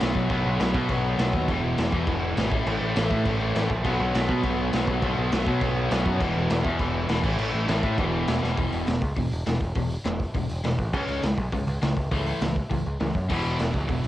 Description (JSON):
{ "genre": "punk rock", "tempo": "203 BPM", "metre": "4/4", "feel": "straight", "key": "unclear", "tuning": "A4 = 441 Hz", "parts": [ { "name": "crunchy overdriven guitar", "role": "riff", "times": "0.0-14.0 s", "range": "E2 to C#4", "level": "-29 LUFS", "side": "left 5 dB", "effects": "none" }, { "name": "sludgy distorted guitar", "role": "riff", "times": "0.0-14.0 s", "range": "E2 to C#4", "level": "-32 LUFS", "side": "right 8 dB", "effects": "overdrive" }, { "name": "tight distorted guitar", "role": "riff", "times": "0.0-8.6, 13.3-14.1 s", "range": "E2 to B3", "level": "-33 LUFS", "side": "right 1 dB", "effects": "distortion" }, { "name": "growling picked electric bass", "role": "bass", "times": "0.0-14.1 s", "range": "E1 to B2", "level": "-27 LUFS", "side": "equal", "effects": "overdrive" }, { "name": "raw garage drum kit", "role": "drums", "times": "0.0-14.1 s", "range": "crash cymbal, hi-hat, kick drum, snare drum", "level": "-28 LUFS", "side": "equal", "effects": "cassette tape" } ], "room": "little or no reverb", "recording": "home recording on cassette", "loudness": "-22 LUFS", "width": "side -14 dB against mid", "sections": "0.0-8.6 A section; 8.6-14.1 B section", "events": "drum fill 8.4", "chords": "0.0 B5; 1.5 E; 2.5 A5; 3.8 B5; 6.2 E5; 7.2 A5; 8.0 E5; 10.9 C#5; 12.1 A/C#; 13.3 E5" }